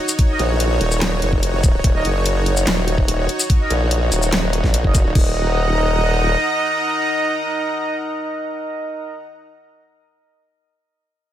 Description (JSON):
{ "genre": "heavy wobble dubstep", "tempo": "145 BPM", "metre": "4/4", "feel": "half-time", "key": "Eb minor", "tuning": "A4 = 440 Hz", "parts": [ { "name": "supersaw pad", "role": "sustained chords", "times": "0.0-9.2 s", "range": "Eb4 to Bb5", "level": "-24 LUFS", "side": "left 1 dB", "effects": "sidechain pumping" }, { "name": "dubstep drum kit", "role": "drums", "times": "0.1-5.2 s", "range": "crash cymbal, handclaps, hi-hat, shaker, snare drum", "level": "-22 LUFS", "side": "left 1 dB", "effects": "small room reverb" }, { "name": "electronic kick drum", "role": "drums", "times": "0.2-5.2 s", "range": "none", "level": "-16 LUFS", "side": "equal", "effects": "small room reverb" }, { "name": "dark brass ensemble", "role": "stabs", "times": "0.3-9.2 s", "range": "Eb4 to Eb5", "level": "-22 LUFS", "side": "right 2 dB", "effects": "ping-pong delay" }, { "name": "formant-sweep wobble bass", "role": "bass", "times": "0.4-6.4 s", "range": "Eb1 to Bb1", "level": "-18 LUFS", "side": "equal", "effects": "chorus, overdrive" } ], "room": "digital ambience", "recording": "none", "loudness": "-16 LUFS", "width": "side -11 dB against mid", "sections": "0.0-5.2 A section; 5.2-8.5 B section", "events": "drop 0.0-5.2", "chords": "0.0 Ebm" }